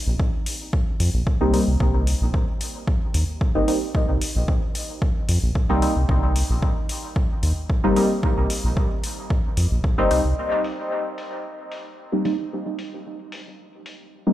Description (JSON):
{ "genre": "dub techno", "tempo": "112 BPM", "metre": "4/4", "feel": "straight", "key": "C minor", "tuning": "A4 = 440 Hz", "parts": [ { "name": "round analog bass", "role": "bass", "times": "0.1-10.3 s", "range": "G1 to F2", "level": "-21 LUFS", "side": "equal", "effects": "tube saturation, sidechain pumping" }, { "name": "electronic kick drum", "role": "drums", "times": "0.2-10.0 s", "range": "none", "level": "-23 LUFS", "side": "equal", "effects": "overdrive" }, { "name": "electronic hi-hat", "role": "drums", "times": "0.5-14.0 s", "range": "none", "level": "-33 LUFS", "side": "left 2 dB", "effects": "overdrive, low-pass filter on hats" }, { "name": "deep mellow chord stab", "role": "stabs", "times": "1.4-14.3 s", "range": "G3 to Eb4", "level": "-24 LUFS", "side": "equal", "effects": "chorus, phaser, sidechain pumping, dub echo" } ], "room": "little or no reverb", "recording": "played on a big sound system in a bare room, stone room reverb", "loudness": "-20 LUFS", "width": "side -14 dB against mid", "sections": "0.0-10.4 A section; 10.4-14.3 B section", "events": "filter sweep on synth stab 10.4-14.3", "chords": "0.0 Cm7", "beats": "0.20 0.73 1.27 | 1.80 2.34 2.88 3.41 | 3.95 4.48 5.02 5.55 | 6.09 6.63 7.16 7.70 | 8.23 8.77 9.30 9.84 | 10.38 10.91 11.45 11.98 | 12.52 13.05 13.59 14.13" }